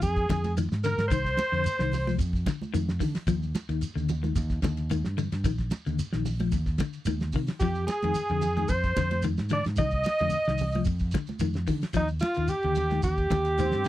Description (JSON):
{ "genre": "afrobeat", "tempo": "111 BPM", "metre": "4/4", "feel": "straight", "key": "F dorian", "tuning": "A4 = 440 Hz", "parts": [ { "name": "clear alto saxophone", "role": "melody", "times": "0.0-2.1, 7.6-13.9 s", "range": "Eb4 to Eb5", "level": "-28 LUFS", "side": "equal", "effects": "none" }, { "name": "growling trumpet", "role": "second line", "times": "0.0-2.2, 7.6-13.9 s", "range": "Eb4 to Eb5", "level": "-34 LUFS", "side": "right 4 dB", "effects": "none" }, { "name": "semi-hollow electric guitar", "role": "arpeggios", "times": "0.0-13.8 s", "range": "D3 to F3", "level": "-32 LUFS", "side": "left 8 dB", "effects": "tremolo" }, { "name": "fingered electric bass", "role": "bass", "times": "0.0-13.9 s", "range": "Bb1 to D3", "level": "-29 LUFS", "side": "equal", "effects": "none" }, { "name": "damped 70s drum kit", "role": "drums", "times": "0.0-13.9 s", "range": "hi-hat, kick drum, ride cymbal, snare drum", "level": "-31 LUFS", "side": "equal", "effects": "none" }, { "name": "congas", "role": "percussion", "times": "0.0-13.9 s", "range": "none", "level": "-35 LUFS", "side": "right 5 dB", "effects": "none" }, { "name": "shekere", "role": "percussion", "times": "0.0-13.9 s", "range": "none", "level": "-39 LUFS", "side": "right 2 dB", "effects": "none" }, { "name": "warm trombone section", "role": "second line", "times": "13.6-13.9 s", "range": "C4", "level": "-33 LUFS", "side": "right 6 dB", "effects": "none" } ], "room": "light reverb", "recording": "dry, close 1970s-style studio recording", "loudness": "-25 LUFS", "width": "side -14 dB against mid", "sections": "0.0-13.9 A section", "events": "none", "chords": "0.0 Fm7; 3.3 Ebmaj7(no3); 7.6 Fm7; 12.0 Ebmaj7" }